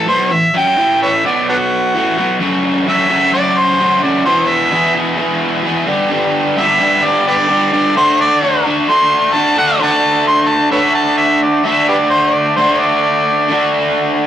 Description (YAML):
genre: rock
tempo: 130 BPM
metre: 4/4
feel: straight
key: unclear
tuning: A4 = 442 Hz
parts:
  - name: overdriven harmonica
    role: melody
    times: 0.0-13.7 s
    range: B3 to C6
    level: -13 LUFS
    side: equal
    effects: none
  - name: crunchy overdriven guitar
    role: riff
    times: 0.0-14.3 s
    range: E2 to G#4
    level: -14 LUFS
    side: equal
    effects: none
room: wet studio reverb, RT60 0.7 s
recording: rough rehearsal-room recording, warm saturation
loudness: -11 LUFS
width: side -10 dB against mid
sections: 0.0-2.4 A section; 2.4-9.8 B section; 9.8-14.3 C section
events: none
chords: 0.0 A; 1.2 B5; 1.9 A5; 2.4 F#m; 4.3 E; 5.9 G; 8.0 D